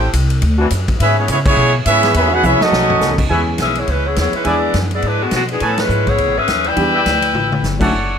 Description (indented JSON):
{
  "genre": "jazz, big band swing",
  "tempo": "208 BPM",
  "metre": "4/4",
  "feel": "swing 59% on 8ths",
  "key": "E major",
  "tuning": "A4 = 441 Hz",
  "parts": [
    { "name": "clear trumpet section", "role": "melody", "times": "0.0-3.2 s", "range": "B3 to G5", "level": "-15 LUFS", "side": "right 2 dB", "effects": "none" },
    { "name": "mellow trombone section", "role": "second line", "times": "0.0-3.2 s", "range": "C#3 to F#4", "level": "-22 LUFS", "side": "equal", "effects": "none" },
    { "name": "upright bass", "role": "bass", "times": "0.0-8.2 s", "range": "F#1 to C#3", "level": "-18 LUFS", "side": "equal", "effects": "none" },
    { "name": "swinging big-band drum kit", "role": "drums", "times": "0.1-8.0 s", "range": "crash cymbal, hi-hat, kick drum, ride cymbal, snare drum, toms", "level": "-21 LUFS", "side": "equal", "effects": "none" },
    { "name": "mellow trombone section", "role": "sustained chords", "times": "0.6-3.3 s", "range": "D#3 to A4", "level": "-22 LUFS", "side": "left 2 dB", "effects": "none" },
    { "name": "warm baby grand piano", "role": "accompaniment", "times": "3.3-7.9 s", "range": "D3 to G#4", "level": "-21 LUFS", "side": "equal", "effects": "none" },
    { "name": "clear trumpet section", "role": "stabs", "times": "3.3-8.2 s", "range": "A4 to G#5", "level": "-21 LUFS", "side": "right 1 dB", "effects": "none" },
    { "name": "clear saxophone section", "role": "melody", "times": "3.6-7.8 s", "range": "D3 to G5", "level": "-16 LUFS", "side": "left 2 dB", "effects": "none" }
  ],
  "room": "moderate large studio reverb, RT60 1.2 s",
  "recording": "none",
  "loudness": "-13 LUFS",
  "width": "side -7 dB against mid",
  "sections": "0.0-3.3 A section; 3.3-8.2 B section",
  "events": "band accent 1.4, 5.8; drum fill 2.4-3.0, 7.3",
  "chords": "0.4 D9; 1.0 E6; 2.7 B9; 3.3 E6; 4.5 E7; 5.6 Amaj9; 6.8 Em7; 7.3 A7"
}